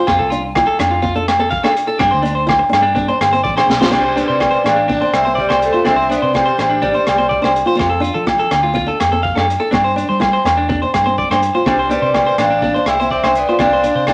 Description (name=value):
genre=highlife guitar band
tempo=124 BPM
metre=4/4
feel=straight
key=C major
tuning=A4 = 441 Hz
part: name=fingerpicked acoustic archtop guitar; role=accompaniment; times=0.0-14.1 s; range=C4 to G4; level=-25 LUFS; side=equal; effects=none
part: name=electric guitar at the edge of break-up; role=arpeggios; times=0.0-14.1 s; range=D4 to F5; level=-22 LUFS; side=equal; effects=none
part: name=vintage muted fingered electric bass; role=bass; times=0.1-14.1 s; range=G1 to G3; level=-27 LUFS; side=equal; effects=none
part: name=crunchy breakbeat drum kit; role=drums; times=0.1-14.1 s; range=crash cymbal, hi-hat, kick drum, rim click, snare drum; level=-24 LUFS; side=equal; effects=none
part: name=agogo bells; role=percussion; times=0.1-14.1 s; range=none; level=-19 LUFS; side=equal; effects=none
part: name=vibraphone with hard mallets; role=melody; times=4.0-7.5, 11.7-14.1 s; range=G4 to G5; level=-20 LUFS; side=equal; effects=none
part: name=breathy tenor saxophone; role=second line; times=4.0-7.5, 11.7-14.1 s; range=G3 to E4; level=-28 LUFS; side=equal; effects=none
room=wet studio reverb, RT60 0.8 s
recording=none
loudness=-15 LUFS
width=mono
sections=0.0-3.9 A section; 3.9-14.1 B section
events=drum fill 3.7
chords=0.1 F; 2.0 Gsus4; 3.9 Csus2; 7.8 F; 9.7 Gsus4; 11.7 Csus2